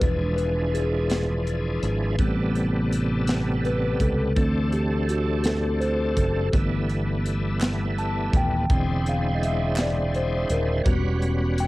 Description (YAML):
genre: slow gospel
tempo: 55 BPM (dotted quarters)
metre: 6/8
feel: straight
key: unclear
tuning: A4 = 440 Hz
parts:
  - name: mellow tine electric piano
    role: accompaniment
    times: 0.0-11.7 s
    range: C3 to A5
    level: -27 LUFS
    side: left 1 dB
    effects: medium stereo tremolo, cassette tape
  - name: bright tonewheel organ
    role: sustained chords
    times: 0.0-11.7 s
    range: C3 to B#4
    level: -29 LUFS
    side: right 1 dB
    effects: slow rotary speaker, chorus vibrato, cassette tape
  - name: fingered electric bass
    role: bass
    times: 0.0-11.7 s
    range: Eb1 to D2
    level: -25 LUFS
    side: equal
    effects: none
  - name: crisp fusion drum kit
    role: drums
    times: 0.0-11.7 s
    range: hi-hat, kick drum, snare drum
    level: -26 LUFS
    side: equal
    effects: cassette tape
  - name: group handclap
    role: percussion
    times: 7.6-10.1 s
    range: none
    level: -33 LUFS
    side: right 2 dB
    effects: none
room: light reverb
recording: home recording on cassette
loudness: -21 LUFS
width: side -19 dB against mid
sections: 0.0-11.7 A section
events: tine electric piano solo 0.0-11.7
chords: 0.0 E7b9; 2.2 Am9; 4.4 D7; 6.5 G69; 8.7 Eaug7; 10.9 Em69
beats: | 0.02 1.11 | 2.19 3.28 | 4.37 5.45 | 6.53 7.62 | 8.70 9.78 | 10.86